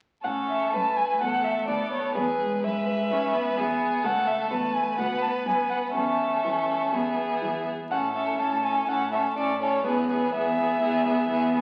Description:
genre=quick classical-period movement for string quartet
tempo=125 BPM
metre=4/4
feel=rubato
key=A major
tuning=A4 = 440 Hz
part: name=rich violin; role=melody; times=0.2-11.5 s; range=B4 to A5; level=-29 LUFS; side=equal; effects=none
part: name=clear violin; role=second line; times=0.2-11.6 s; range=G#4 to B4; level=-32 LUFS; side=equal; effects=none
part: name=warm viola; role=accompaniment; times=0.2-11.6 s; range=G#3 to C#4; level=-32 LUFS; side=equal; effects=none
part: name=rich cello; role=bass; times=0.2-11.6 s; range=C#2 to E3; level=-34 LUFS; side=equal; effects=none
room=wet recital hall reverb, RT60 1.6 s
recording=very old 78 rpm record, vinyl crackle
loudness=-26 LUFS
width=mono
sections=0.2-11.6 A section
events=none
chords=0.2 A; 2.2 E; 4.0 A/C#; 5.0 Bm/D; 6.0 A/E; 6.9 E; 7.9 A; 9.9 E

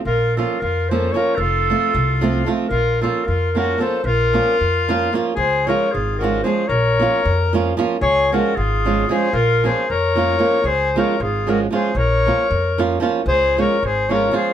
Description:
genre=balkan folk, Balkan wedding band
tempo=228 BPM (eighths)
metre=5/8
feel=straight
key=Bb harmonic minor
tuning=A4 = 440 Hz
part: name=warm clarinet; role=melody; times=0.1-14.5 s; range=Ab4 to Db5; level=-20 LUFS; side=left 1 dB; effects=none
part: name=accordion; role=second line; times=0.1-14.5 s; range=F4 to Bb4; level=-23 LUFS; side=left 5 dB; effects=none
part: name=upright bass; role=bass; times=0.1-14.3 s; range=F1 to F2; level=-22 LUFS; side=equal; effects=none
part: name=flamenco guitar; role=accompaniment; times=0.4-14.5 s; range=F3 to F4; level=-20 LUFS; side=right 5 dB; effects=none
room=wet studio reverb, RT60 0.5 s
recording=band playing live in one room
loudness=-16 LUFS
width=side -10 dB against mid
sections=0.0-5.4 A section; 5.4-14.5 B section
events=none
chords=0.1 Bbm; 1.4 F; 2.7 Bbm; 5.4 Db; 6.7 Bbm; 8.0 Db; 9.3 Bbm; 10.6 Db; 11.9 Bbm; 13.3 Db

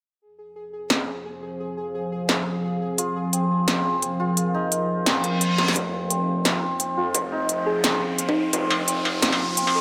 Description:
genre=half-time drum and bass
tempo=173 BPM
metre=4/4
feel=swing 58% on 16ths, half-time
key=F minor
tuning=A4 = 445 Hz
part: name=deep dark ambient pad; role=sustained chords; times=1.4-9.8 s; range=F3 to F5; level=-30 LUFS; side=equal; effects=chorus, built-in reverb, sidechain pumping
part: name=pulsing gated texture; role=texture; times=0.4-5.8 s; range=Ab4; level=-37 LUFS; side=equal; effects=chorus, built-in reverb
part: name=industrial drum kit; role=drums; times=0.9-9.7 s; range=hi-hat, snare drum, struck metal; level=-25 LUFS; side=equal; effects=none
part: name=santur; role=arpeggios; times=3.0-9.8 s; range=C4 to F5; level=-28 LUFS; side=equal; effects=low-pass filter, delay
part: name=reverse cymbal and riser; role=sound effects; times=5.2-9.8 s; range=none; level=-34 LUFS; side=equal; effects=none
part: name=phased detuned saw bass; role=bass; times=5.8-9.8 s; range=F1 to F2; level=-34 LUFS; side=equal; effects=phaser, high-pass filter
part: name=electronic kick drum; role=drums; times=5.8-8.6 s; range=none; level=-33 LUFS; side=equal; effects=distortion, high-pass filter on kick, high-pass filter on room
part: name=thumb-piano-like synth pluck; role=melody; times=7.7-8.5 s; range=Eb4 to Ab4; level=-29 LUFS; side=equal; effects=chorus, digital delay
room=wet echo chamber reverb, RT60 1.9 s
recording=none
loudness=-23 LUFS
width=mono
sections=0.2-5.8 A section; 5.8-9.8 B section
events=reverse cymbal 5.2-5.8; drum fill 5.6; build-up 5.8-9.8; riser 5.8-9.8; filter sweep on santur 5.8-9.8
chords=0.2 F5

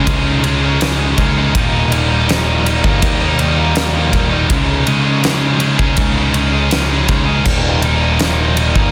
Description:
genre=quiet-loud alternative rock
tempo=81 BPM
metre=4/4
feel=straight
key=Eb mixolydian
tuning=A4 = 441 Hz
part: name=high-gain distorted guitar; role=riff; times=0.0-8.9 s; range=Eb2 to Ab4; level=-20 LUFS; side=equal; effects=distortion
part: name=thick fuzz guitar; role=riff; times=0.0-8.9 s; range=Eb2 to Ab4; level=-23 LUFS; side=equal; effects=distortion
part: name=picked electric bass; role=bass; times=0.0-8.9 s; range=Eb1 to Eb2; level=-20 LUFS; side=equal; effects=none
part: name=huge arena drum kit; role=drums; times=0.1-8.9 s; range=crash cymbal, kick drum, ride cymbal, snare drum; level=-20 LUFS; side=equal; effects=none
room=light reverb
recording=dense, heavily limited modern master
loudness=-14 LUFS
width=mono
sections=0.0-8.9 A section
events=none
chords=0.0 Dbsus2; 1.5 Eb; 4.5 Dbsus2; 7.5 Eb

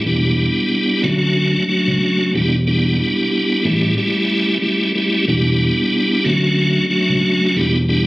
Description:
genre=hip hop, boom-bap hip-hop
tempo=92 BPM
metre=4/4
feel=swing 56% on 16ths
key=E dorian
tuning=A4 = 439 Hz
part: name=tonewheel organ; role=accompaniment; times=0.0-8.1 s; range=F#3 to G4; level=-15 LUFS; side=equal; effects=chorus vibrato, fast rotary speaker, cassette tape, high-pass filter, low-pass filter
part: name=fingered electric bass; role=bass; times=0.1-8.1 s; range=E1 to D2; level=-18 LUFS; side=equal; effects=none
room=light reverb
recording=recorded on a phone in the room, club reverb, vinyl crackle, compression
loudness=-14 LUFS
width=side -19 dB against mid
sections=0.0-5.3 A section; 5.3-8.1 B section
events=none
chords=0.1 Em7; 1.0 Dmaj7; 2.3 Em7; 3.6 A7; 5.3 Em7; 6.3 Dmaj7; 7.6 Em7

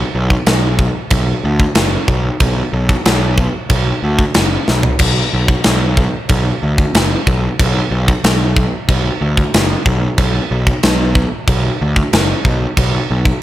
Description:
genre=heavy metal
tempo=93 BPM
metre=4/4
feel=straight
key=B minor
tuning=A4 = 441 Hz
part: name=fuzz picked electric bass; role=bass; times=0.0-13.3 s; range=F#1 to D2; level=-15 LUFS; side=equal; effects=overdrive
part: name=tight metal drum kit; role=drums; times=0.3-13.4 s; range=china cymbal, crash cymbal, kick drum, snare drum, toms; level=-15 LUFS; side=equal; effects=none
room=little or no reverb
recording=none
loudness=-12 LUFS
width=side -14 dB against mid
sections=0.0-13.4 A section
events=drum fill 4.7-5.0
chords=none

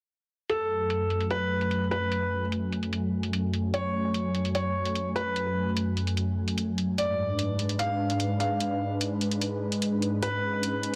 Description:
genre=heavy wobble dubstep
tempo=148 BPM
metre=4/4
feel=half-time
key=F# harmonic minor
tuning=A4 = 439 Hz
part: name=dark concert grand piano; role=melody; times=0.5-11.0 s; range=A4 to E#5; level=-32 LUFS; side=equal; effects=delay
part: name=supersaw pad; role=sustained chords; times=0.7-11.0 s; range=F#2 to G#5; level=-30 LUFS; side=equal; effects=low-pass filter
part: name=electronic hi-hat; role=drums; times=0.5-10.9 s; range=none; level=-36 LUFS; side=equal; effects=low-pass filter on hats
room=moderate lush hall reverb, RT60 1.6 s, small room ambience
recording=dense, heavily limited modern master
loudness=-28 LUFS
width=mono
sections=0.5-11.0 A section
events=filter sweep on supersaw synth 0.5-11.0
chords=0.5 F#madd9; 7.0 G#dim

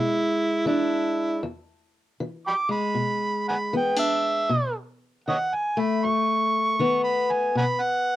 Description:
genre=acoustic country blues, solo or duo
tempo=78 BPM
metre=4/4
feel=swing 63% on 8ths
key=E major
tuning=A4 = 440 Hz
part: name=overdriven harmonica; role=melody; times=0.0-8.2 s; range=E4 to D6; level=-24 LUFS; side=right 1 dB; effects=none
part: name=fingerpicked steel-string acoustic guitar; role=accompaniment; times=0.0-8.2 s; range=E2 to D4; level=-25 LUFS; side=left 2 dB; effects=none
room=light reverb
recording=dry, close 1970s-style studio recording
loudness=-22 LUFS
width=side -14 dB against mid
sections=0.0-8.2 A section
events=harmonica solo 0.0-8.2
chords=0.0 E7; 4.5 B7

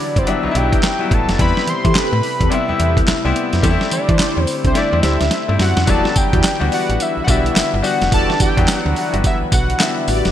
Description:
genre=R&B, new jack swing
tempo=107 BPM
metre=4/4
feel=swing 62% on 16ths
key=E minor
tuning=A4 = 440 Hz
part: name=fat analog lead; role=melody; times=0.0-10.3 s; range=C5 to C6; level=-21 LUFS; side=equal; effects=ping-pong delay
part: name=clear concert grand piano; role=accompaniment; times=0.0-10.3 s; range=F#3 to F#4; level=-21 LUFS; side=left 4 dB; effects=none
part: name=chorused pulse-width pad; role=sustained chords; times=0.0-10.3 s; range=C3 to B4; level=-27 LUFS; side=right 1 dB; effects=none
part: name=mellow synth brass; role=stabs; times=0.2-10.3 s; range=C4 to D5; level=-25 LUFS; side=left 1 dB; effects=chorus, phaser
part: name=slap-like FM bass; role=bass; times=0.2-10.3 s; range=E1 to E3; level=-19 LUFS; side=equal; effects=none
part: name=dusty soul sampler-style drum kit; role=drums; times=0.2-10.3 s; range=handclaps, hi-hat, kick drum, snare drum, tambourine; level=-18 LUFS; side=right 1 dB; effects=none
room=light reverb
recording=bright 1980s-style digital production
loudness=-14 LUFS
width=side -11 dB against mid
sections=0.0-5.9 A section; 5.9-10.3 B section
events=drum fill 4.8-5.9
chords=0.0 Em9; 1.4 Am9/E; 3.6 D9sus4; 5.9 Em9

